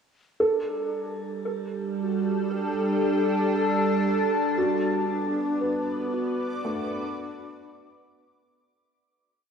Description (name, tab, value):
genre	ambient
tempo	58 BPM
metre	4/4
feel	straight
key	G major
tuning	A4 = 440 Hz
part	breathy wooden-headed alto flute	melody	0.4-8.2 s	D4 to A4	-33 LUFS	left 4 dB	cassette tape, shimmer reverb
part	evolving wavetable pad	sustained chords	1.2-8.8 s	G3 to A5	-25 LUFS	right 1 dB	chorus, built-in reverb, cassette tape, shimmer reverb
part	felt-muted upright piano	arpeggios	0.4-8.9 s	A3 to A4	-29 LUFS	right 1 dB	cassette tape, shimmer reverb, tape echo
part	backwards swelling texture	texture	5.2-8.8 s	D6	-42 LUFS	equal	built-in reverb, cassette tape, shimmer reverb
room	wet lush hall reverb, RT60 2.5 s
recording	home recording on cassette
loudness	-24 LUFS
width	side -6 dB against mid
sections	0.4-8.8 A section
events	fade-in on alto flute 0.4-8.8; fade-out 4.6-8.8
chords	0.4 Gsus2; 4.6 Bm